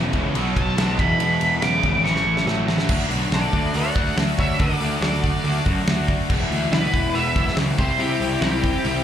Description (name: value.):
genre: classic rock.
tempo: 141 BPM.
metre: 4/4.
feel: straight.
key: unclear.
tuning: A4 = 441 Hz.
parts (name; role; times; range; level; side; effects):
string machine, cellos; sustained chords; 0.0-9.0 s; F#3 to D5; -37 LUFS; equal; none.
cranked stack guitar; riff; 0.0-2.9 s; E2 to G#3; -28 LUFS; right 12 dB; overdrive, slapback echo.
crunchy overdriven guitar; riff; 0.0-9.0 s; E2 to D4; -28 LUFS; equal; slapback echo.
overdriven electric guitar; riff; 0.0-9.0 s; E2 to F#4; -29 LUFS; left 12 dB; slapback echo.
fuzz picked electric bass; bass; 0.0-9.0 s; E1 to D3; -24 LUFS; equal; overdrive.
damped 70s drum kit; drums; 0.1-8.9 s; crash cymbal, hi-hat, kick drum, ride cymbal, snare drum; -24 LUFS; equal; none.
octave-fuzz lead guitar; melody; 0.6-9.0 s; G4 to D6; -25 LUFS; right 1 dB; distortion, slapback echo.
lightly driven lead guitar; second line; 3.4-9.0 s; E4 to D5; -29 LUFS; left 1 dB; slapback echo.
room: light reverb.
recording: live gig heard through the venue's PA, club reverb.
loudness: -18 LUFS.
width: side -10 dB against mid.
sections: 0.0-2.9 A section; 2.9-9.0 B section.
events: lead electric guitar solo 0.0-2.9; drum fill 2.1-2.9.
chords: 0.4 B; 1.0 E; 2.1 A7; 2.9 D; 6.3 E; 7.8 C.